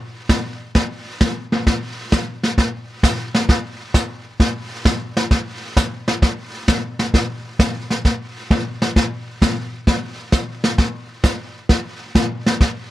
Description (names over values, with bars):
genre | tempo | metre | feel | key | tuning
country | 132 BPM | 4/4 | swing 68% on 8ths | none | none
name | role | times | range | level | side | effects
jazz brush drum kit | drums | 0.3-12.9 s | brushed snare drum, hi-hat, kick drum, snare drum | -17 LUFS | equal | none
room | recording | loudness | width
little or no reverb | cassette tape | -17 LUFS | side -15 dB against mid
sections
0.0-12.9 A section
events
none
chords
none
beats
0.30 0.75 1.21 | 1.67 2.12 2.58 3.03 | 3.49 3.95 4.40 4.86 | 5.31 5.77 6.23 6.68 | 7.14 7.59 8.05 8.51 | 8.96 9.42 9.87 10.33 | 10.79 11.24 11.70 12.15 | 12.61